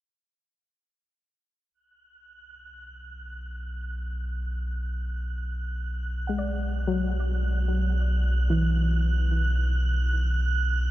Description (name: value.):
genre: ambient.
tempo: free time.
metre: none.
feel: none.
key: B dorian.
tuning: A4 = 440 Hz.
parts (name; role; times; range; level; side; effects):
deep rumbling drone; bass; 3.2-10.9 s; B1; -26 LUFS; equal; built-in reverb.
wind-like tuned noise texture; texture; 2.2-10.9 s; F#6; -36 LUFS; right 5 dB; built-in reverb.
soft round pluck; arpeggios; 6.3-10.5 s; E3 to F#5; -30 LUFS; left 1 dB; chorus, tape echo.
room: moderate cathedral reverb, RT60 7.0 s.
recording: none.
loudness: -24 LUFS.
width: side -16 dB against mid.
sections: 1.7-10.9 A section.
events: fade-in on synth pluck 1.7-10.9; fade-in on synth texture 1.7-10.9.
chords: 1.7 Bm6.